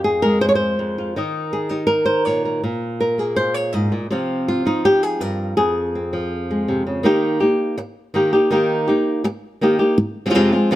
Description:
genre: flamenco.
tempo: 163 BPM.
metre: 4/4.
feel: straight.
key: unclear.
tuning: A4 = 440 Hz.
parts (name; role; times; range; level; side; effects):
flamenco guitar; solo; 0.0-10.8 s; F2 to Eb5; -17 LUFS; equal; none.
room: light reverb.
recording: close, detailed microphones.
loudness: -17 LUFS.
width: side -14 dB against mid.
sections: 0.0-7.0 A section; 7.0-10.8 B section.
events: none.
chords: 0.0 Fm; 1.2 Eb5; 2.6 Abadd9; 4.1 Csus4; 5.6 Fm; 7.0 Eb; 10.0 Fm.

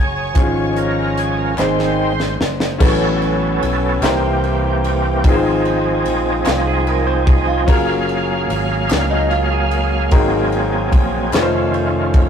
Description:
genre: slow gospel.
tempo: 49 BPM (dotted quarters).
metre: 6/8.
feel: straight.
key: unclear.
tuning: A4 = 440 Hz.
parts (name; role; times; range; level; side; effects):
bright baby grand piano; accompaniment; 0.0-12.3 s; Ab2 to Db5; -22 LUFS; left 4 dB; none.
overdriven tonewheel organ; sustained chords; 0.0-12.3 s; Eb3 to F5; -19 LUFS; right 2 dB; slow rotary speaker, chorus vibrato.
warm studio string section; sustained chords; 0.0-2.8 s; C5 to Db6; -30 LUFS; left 2 dB; none.
fingered electric bass; bass; 0.0-12.3 s; F1 to Db2; -22 LUFS; equal; none.
crisp fusion drum kit; drums; 0.4-12.3 s; crash cymbal, hi-hat, kick drum, ride cymbal, snare drum; -18 LUFS; equal; none.
group handclap; percussion; 1.6-11.7 s; none; -27 LUFS; left 3 dB; none.
clean electric guitar; second line; 6.5-10.1 s; Eb4 to C5; -23 LUFS; right 3 dB; spring reverb.
room: moderate studio reverb, RT60 0.6 s.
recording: rough rehearsal-room recording, tube saturation.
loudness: -14 LUFS.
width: side -8 dB against mid.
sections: 0.0-2.8 A section; 2.8-12.3 B section.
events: tonewheel organ solo 0.0-2.8; drum fill 1.6-2.8.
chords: 0.4 Db/Ab; 1.6 Ab; 2.8 A69; 4.0 C7; 5.2 Fm7/Ab; 7.7 Gbmaj9; 10.1 Ab9; 11.3 F7b13.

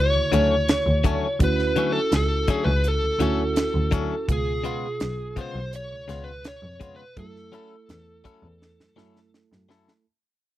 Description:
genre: straight-eighth soul blues.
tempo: 83 BPM.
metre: 4/4.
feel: straight.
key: F# minor.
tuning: A4 = 445 Hz.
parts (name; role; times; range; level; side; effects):
overdriven slide guitar; melody; 0.0-9.3 s; G#4 to C#5; -26 LUFS; equal; slapback echo.
mellow reed electric piano; accompaniment; 0.0-10.1 s; B2 to A4; -32 LUFS; right 6 dB; none.
rich double bass; bass; 0.1-9.8 s; B1 to F#2; -25 LUFS; equal; none.
direct-recorded clean electric guitar; stabs; 0.3-9.9 s; C#3 to A4; -27 LUFS; left 7 dB; none.
tight funk drum kit; drums; 0.3-10.0 s; hi-hat, kick drum, snare drum; -24 LUFS; equal; none.
room: little or no reverb.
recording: dry, close 1970s-style studio recording.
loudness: -20 LUFS.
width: side -14 dB against mid.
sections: 0.0-10.1 A section.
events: fade-out 0.0-10.1; drum fill 8.6-10.1.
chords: 0.0 Dmaj7; 4.3 C#7; 7.2 F#m7.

